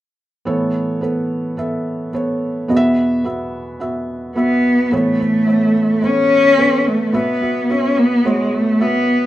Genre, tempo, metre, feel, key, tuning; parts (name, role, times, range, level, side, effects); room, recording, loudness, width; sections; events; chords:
pop; 108 BPM; 4/4; straight; A major; A4 = 439 Hz
felt-muted upright piano; accompaniment; 0.5-9.3 s; E2 to E5; -18 LUFS; right 1 dB
warm cello; melody; 4.4-9.3 s; G#3 to C#4; -14 LUFS; left 1 dB
wet small room reverb, RT60 0.5 s; rough home demo mix, nothing above 10.7 kHz; -14 LUFS; side -14 dB against mid
0.5-4.9 A section; 4.9-9.3 B section
0.5 Aadd9; 2.7 Esus2; 4.9 Aadd9; 7.1 Esus2